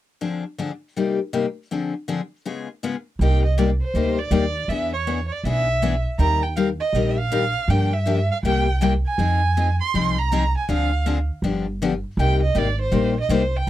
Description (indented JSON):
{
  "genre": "acoustic string swing (jazz manouche)",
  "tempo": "161 BPM",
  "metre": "4/4",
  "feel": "swing 63% on 8ths",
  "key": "C minor",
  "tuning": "A4 = 440 Hz",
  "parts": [
    { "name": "picked steel-string acoustic guitar", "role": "accompaniment", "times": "0.2-13.7 s", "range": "C3 to Bb4", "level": "-23 LUFS", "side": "left 5 dB", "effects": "none" },
    { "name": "warm violin", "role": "melody", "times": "3.2-13.7 s", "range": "C5 to C6", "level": "-24 LUFS", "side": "right 3 dB", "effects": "none" },
    { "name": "upright bass", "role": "bass", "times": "3.2-13.7 s", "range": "G1 to G2", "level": "-22 LUFS", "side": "right 1 dB", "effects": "none" }
  ],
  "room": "little or no reverb",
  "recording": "dry, close 1970s-style studio recording",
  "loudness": "-19 LUFS",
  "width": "side -13 dB against mid",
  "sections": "0.2-3.2 A section; 3.2-13.7 B section",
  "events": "none",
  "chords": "0.2 Dm7b5; 1.0 Cm7; 1.7 Dm7b5; 2.5 Db7; 3.2 Cm7; 4.7 E7; 6.2 Eb6; 7.7 Gm7; 8.4 C7; 9.2 Fm7; 10.7 Dm7b5; 11.4 G7; 12.2 Cm7"
}